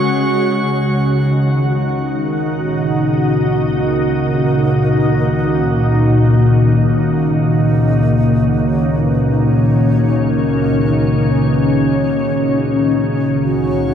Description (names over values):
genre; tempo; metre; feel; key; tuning
ambient; 75 BPM; 4/4; straight; unclear; A4 = 438 Hz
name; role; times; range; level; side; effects
soft additive organ-like pad; sustained chords; 0.0-13.9 s; C#2 to F#4; -13 LUFS; equal; ensemble chorus, built-in reverb
analog drone; drone; 0.0-13.9 s; C#3 to C#4; -22 LUFS; left 1 dB; none
drifting glass-harmonics texture; texture; 0.0-0.6, 13.5-13.9 s; C#6; -26 LUFS; right 3 dB; chorus, built-in reverb
breathy mellow wooden-headed alto flute; melody; 0.6-13.9 s; F#4 to D#5; -28 LUFS; equal; diffuse ambient delay
room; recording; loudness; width
wet cathedral reverb, RT60 5.6 s; dark, warm production; -13 LUFS; side -8 dB against mid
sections
0.6-13.9 A section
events
fade-in on alto flute 0.6-13.9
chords
0.0 C#5; 0.6 D#m7/C#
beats
| 0.65 1.45 2.25 3.05 | 3.85 4.65 5.45 6.25 | 7.05 7.85 8.65 9.45 | 10.25 11.05 11.85 12.65 | 13.45